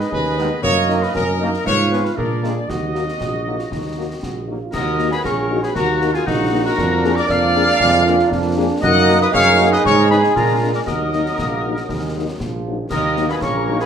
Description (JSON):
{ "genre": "military-style march for wind band", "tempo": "117 BPM", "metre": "2/4", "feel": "straight", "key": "Eb minor", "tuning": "A4 = 438 Hz", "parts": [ { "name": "mellow trumpet section", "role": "melody", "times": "0.0-13.9 s", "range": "Gb4 to Gb5", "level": "-22 LUFS", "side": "equal", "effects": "none" }, { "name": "clear euphonium", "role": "second line", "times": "0.0-13.9 s", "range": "Cb3 to Ab4", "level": "-23 LUFS", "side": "right 3 dB", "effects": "none" }, { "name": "clear woodwind section", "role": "second line", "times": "0.0-13.9 s", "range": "Eb4 to F5", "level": "-24 LUFS", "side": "left 2 dB", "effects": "none" }, { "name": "mellow tuba", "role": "bass", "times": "0.0-13.8 s", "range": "Bb1 to Bb2", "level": "-21 LUFS", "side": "right 3 dB", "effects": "none" }, { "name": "concert snare drum, concert bass drum and clash cymbals", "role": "drums", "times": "0.0-13.9 s", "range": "none", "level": "-29 LUFS", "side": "left 2 dB", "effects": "none" }, { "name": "mellow French horn section", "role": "accompaniment", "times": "0.4-13.8 s", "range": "Gb3 to Ab4", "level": "-25 LUFS", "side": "left 6 dB", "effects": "none" }, { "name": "clear trombone section", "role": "sustained chords", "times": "0.4-13.9 s", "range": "Eb3 to Eb4", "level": "-27 LUFS", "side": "right 2 dB", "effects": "none" }, { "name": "mellow piccolo", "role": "second line", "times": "4.7-13.9 s", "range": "Gb5 to Gb6", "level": "-23 LUFS", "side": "left 4 dB", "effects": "none" } ], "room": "wet large studio reverb, RT60 0.7 s", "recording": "none", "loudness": "-15 LUFS", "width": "side -8 dB against mid", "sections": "0.0-4.7 A section; 4.7-12.9 B section", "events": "none", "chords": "0.0 Abm; 0.6 Ebm/Gb; 1.7 Fdim/Ab; 2.2 Bb7; 2.7 Ebm; 6.8 Bb7/F; 8.8 Ebm/Gb; 9.8 Abm; 10.4 Bb7; 10.9 Ebm", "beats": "0.12 | 0.64 1.15 | 1.66 2.17 | 2.69 3.20 | 3.71 4.22 | 4.73 5.25 | 5.76 6.27 | 6.78 7.29 | 7.80 8.31 | 8.83 9.34 | 9.85 10.36 | 10.87 11.38 | 11.89 12.40 | 12.91 13.43" }